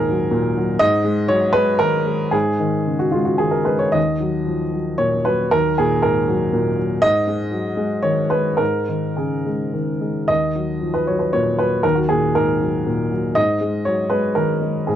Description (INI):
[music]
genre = neoclassical minimalist piano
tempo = 104-125 BPM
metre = 3/4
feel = rubato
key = Eb minor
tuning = A4 = 440 Hz
[part]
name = dark upright piano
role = solo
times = 0.0-15.0 s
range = Eb2 to Eb5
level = -17 LUFS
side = equal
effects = none
[sound]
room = little or no reverb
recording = dry, close 1970s-style studio recording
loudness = -17 LUFS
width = side -10 dB against mid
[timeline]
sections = 0.0-10.3 A section; 10.3-15.0 B section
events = none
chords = 0.0 Ebm; 0.8 Ab5; 4.0 Ebmadd9; 7.0 Ab5; 10.3 Ebmadd9; 13.4 Ab5